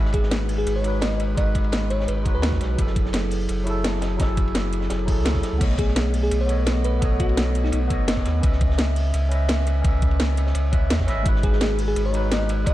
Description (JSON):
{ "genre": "liquid drum and bass", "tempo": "170 BPM", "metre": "4/4", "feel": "straight", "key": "C# minor", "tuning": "A4 = 439 Hz", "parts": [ { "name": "overdriven tine electric piano", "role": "accompaniment", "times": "0.0-12.7 s", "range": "F#3 to E5", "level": "-27 LUFS", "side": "left 1 dB", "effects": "wide subtle chorus, dub echo" }, { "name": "warm sub bass", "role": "bass", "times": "0.0-12.7 s", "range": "F#1 to E2", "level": "-23 LUFS", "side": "equal", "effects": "none" }, { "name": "bell-like FM electric piano", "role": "melody", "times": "0.1-2.7, 5.8-7.8, 11.4-12.7 s", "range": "D#4 to D#5", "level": "-29 LUFS", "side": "equal", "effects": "chorus, dub echo" }, { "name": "crunchy breakbeat drum kit", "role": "drums", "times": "0.1-12.7 s", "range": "hi-hat, ride cymbal, snare drum", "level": "-35 LUFS", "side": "equal", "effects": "high-pass filter on cymbals, high-pass filter on hats, high-pass filter on snare, high-pass filter on room" }, { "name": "drum and bass drum kit", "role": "drums", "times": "0.1-12.7 s", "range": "crash cymbal, hi-hat, snare drum", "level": "-27 LUFS", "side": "equal", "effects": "none" }, { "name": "electronic kick drum", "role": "drums", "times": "0.1-12.7 s", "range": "none", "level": "-22 LUFS", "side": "equal", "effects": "none" } ], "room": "light reverb", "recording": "dark, warm production", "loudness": "-19 LUFS", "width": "side -15 dB against mid", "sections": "0.0-12.7 A section", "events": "none", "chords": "0.0 G#m7; 2.8 F#m9; 5.6 B9; 8.4 C#m9; 11.3 G#m7", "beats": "0.32 0.67 1.02 | 1.37 1.73 2.08 2.43 | 2.79 3.14 3.49 3.85 | 4.20 4.55 4.90 5.26 | 5.61 5.96 6.32 6.67 | 7.02 7.37 7.73 8.08 | 8.43 8.79 9.14 9.49 | 9.85 10.20 10.55 10.90 | 11.26 11.61 11.96 12.32 | 12.67" }